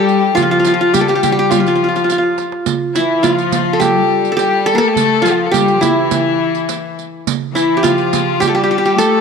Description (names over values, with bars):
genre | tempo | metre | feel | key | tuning
Arabic maqam ensemble | 104 BPM | 4/4 | straight | unclear | A4 = 440 Hz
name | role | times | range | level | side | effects
qanun | melody | 0.0-9.2 s | E4 to Bb4+25c | -14 LUFS | right 3 dB | tape echo
dark violin | second line | 0.0-9.2 s | E4 to A4 | -19 LUFS | left 12 dB | none
rich symphonic cello section | second line | 0.0-9.2 s | E3 to Bb3+25c | -20 LUFS | left 10 dB | none
darbuka | percussion | 0.1-9.1 s | none | -24 LUFS | right 10 dB | none
riq | percussion | 0.1-9.1 s | none | -22 LUFS | right 16 dB | none
room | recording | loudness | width
light reverb, small room ambience | 1960s-style stereo with parts hard left and right | -12 LUFS | side -6 dB against mid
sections
0.0-9.2 A section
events
drum fill 2.1-2.7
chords
none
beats
| 0.37 0.94 1.52 2.09 | 2.67 3.24 3.81 4.39 | 4.96 5.54 6.11 6.69 | 7.26 7.84 8.41 8.99